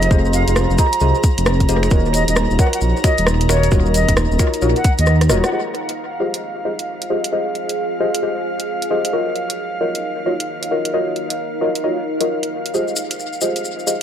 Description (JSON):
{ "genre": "UK garage, two-step garage", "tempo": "133 BPM", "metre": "4/4", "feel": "swing 63% on 16ths", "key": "F phrygian", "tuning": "A4 = 444 Hz", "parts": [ { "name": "bright wooden flute", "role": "melody", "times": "0.0-5.6 s", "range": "Db5 to Bb5", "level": "-23 LUFS", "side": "right 1 dB", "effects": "tape echo" }, { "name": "airy breathy pad", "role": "sustained chords", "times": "0.0-14.0 s", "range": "F5 to Bb5", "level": "-28 LUFS", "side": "equal", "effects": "chorus, sidechain pumping" }, { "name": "deep mellow chord stab", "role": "stabs", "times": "0.0-13.9 s", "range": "F4 to Eb5", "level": "-22 LUFS", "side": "left 1 dB", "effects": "chorus, dub echo" }, { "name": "dark detuned saw bass", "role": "bass", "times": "0.0-5.4 s", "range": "Eb1 to Eb2", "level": "-16 LUFS", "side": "equal", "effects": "tube saturation" }, { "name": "garage drum kit", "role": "drums", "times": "0.0-13.6 s", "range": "finger snaps, hi-hat, rim click", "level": "-23 LUFS", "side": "right 1 dB", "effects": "overdrive, tape echo" }, { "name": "maracas", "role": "percussion", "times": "0.0-5.5, 12.7-14.0 s", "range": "none", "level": "-28 LUFS", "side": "left 4 dB", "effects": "tape echo" }, { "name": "deep dark ambient pad", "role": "texture", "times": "0.1-14.0 s", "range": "Eb4 to C5", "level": "-26 LUFS", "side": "right 1 dB", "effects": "chorus, built-in reverb, sidechain pumping" }, { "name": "electronic kick drum", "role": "drums", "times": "0.1-5.0 s", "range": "none", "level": "-16 LUFS", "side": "equal", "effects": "overdrive" } ], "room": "light reverb, digital ambience", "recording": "echo-heavy mix", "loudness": "-16 LUFS", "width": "side -9 dB against mid", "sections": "0.0-5.5 A section; 5.5-14.0 B section", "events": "kick drops out 5.1-5.5; drum fill 5.1-5.5; band accent 5.4", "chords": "0.0 Fm9; 1.9 Ebm9; 5.5 Fm9; 9.1 Ebm9; 12.7 Fm9", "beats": "| 0.11 0.56 1.01 1.46 | 1.91 2.36 2.81 3.27 | 3.72 4.17 4.62 5.07 | 5.52 5.97 6.42 6.88 | 7.33 7.78 8.23 8.68 | 9.13 9.58 10.03 10.48 | 10.94 11.39 11.84 12.29 | 12.74 13.19 13.64" }